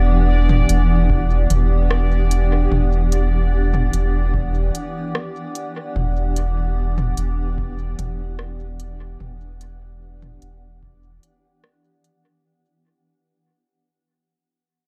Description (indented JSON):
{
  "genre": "ambient dub",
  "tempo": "74 BPM",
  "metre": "4/4",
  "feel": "straight",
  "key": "E minor",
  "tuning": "A4 = 437 Hz",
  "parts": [
    { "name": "granular cloud pad", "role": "sustained chords", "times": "0.0-12.4 s", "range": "E3 to F#5", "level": "-28 LUFS", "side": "equal", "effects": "built-in reverb, vintage 12-bit sampler grit" },
    { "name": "soft dub sub bass", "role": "bass", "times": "0.0-11.2 s", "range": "E1", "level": "-21 LUFS", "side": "equal", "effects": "none" },
    { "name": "bubbling stepped-filter texture", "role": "texture", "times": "0.0-12.5 s", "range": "D5", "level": "-34 LUFS", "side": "equal", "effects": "chorus, built-in reverb" },
    { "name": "organic electronic drum kit", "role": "drums", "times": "0.5-12.2 s", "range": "hi-hat, rim click, toms", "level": "-29 LUFS", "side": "equal", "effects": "overdrive, dub echo" },
    { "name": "electronic kick drum", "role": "drums", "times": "1.1-11.0 s", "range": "none", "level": "-29 LUFS", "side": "equal", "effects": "none" }
  ],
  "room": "little or no reverb",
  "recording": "echo-heavy mix",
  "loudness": "-19 LUFS",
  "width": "mono",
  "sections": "0.0-12.4 A section",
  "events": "fade-out 0.0-12.4",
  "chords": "0.0 Em7"
}